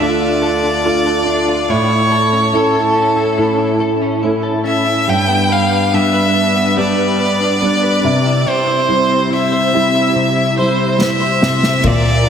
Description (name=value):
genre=pop ballad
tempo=71 BPM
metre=4/4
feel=straight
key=unclear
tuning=A4 = 440 Hz
part: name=clear violin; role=melody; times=0.0-12.3 s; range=A4 to G5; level=-16 LUFS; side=equal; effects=none
part: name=clear concert grand piano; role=accompaniment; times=0.0-12.3 s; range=D2 to F4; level=-17 LUFS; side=right 2 dB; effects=ensemble chorus
part: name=direct-recorded clean electric guitar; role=arpeggios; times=0.0-12.3 s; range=A2 to C5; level=-19 LUFS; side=left 4 dB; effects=ensemble chorus
part: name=unplugged drum kit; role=drums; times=11.0-12.0 s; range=crash cymbal, kick drum, snare drum, toms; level=-17 LUFS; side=equal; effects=none
part: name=warm studio cello section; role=bass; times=11.8-12.3 s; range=Bb2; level=-15 LUFS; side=left 1 dB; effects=none
room=wet lush hall reverb, RT60 2.5 s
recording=dreamy mix soaked in reverb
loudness=-12 LUFS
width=side -7 dB against mid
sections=0.0-11.8 A section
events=drum fill 11.0-11.8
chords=0.0 Dm; 1.7 A; 5.1 G; 8.0 C